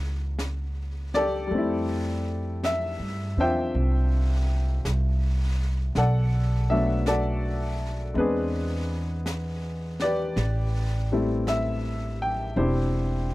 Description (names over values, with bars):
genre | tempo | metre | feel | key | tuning
jazz ballad | 54 BPM | 4/4 | swing 68% on 8ths | A minor | A4 = 439 Hz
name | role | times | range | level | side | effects
clear upright piano | accompaniment | 0.0-13.3 s | C#3 to G5 | -27 LUFS | left 2 dB | none
upright bass | bass | 0.0-13.3 s | E1 to G2 | -26 LUFS | equal | none
jazz brush drum kit | drums | 0.4-13.3 s | brushed snare drum, hi-hat, snare drum | -39 LUFS | equal | none
room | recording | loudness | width
little or no reverb | dry, close 1970s-style studio recording | -24 LUFS | side -18 dB against mid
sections
0.0-13.3 A section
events
none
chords
0.0 F#7; 1.5 Fmaj9; 5.9 Bm7; 8.2 E7b13; 10.4 Am9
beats
0.39 | 1.51 2.62 3.74 4.84 | 5.95 7.05 8.15 9.26 | 10.36 11.46 12.57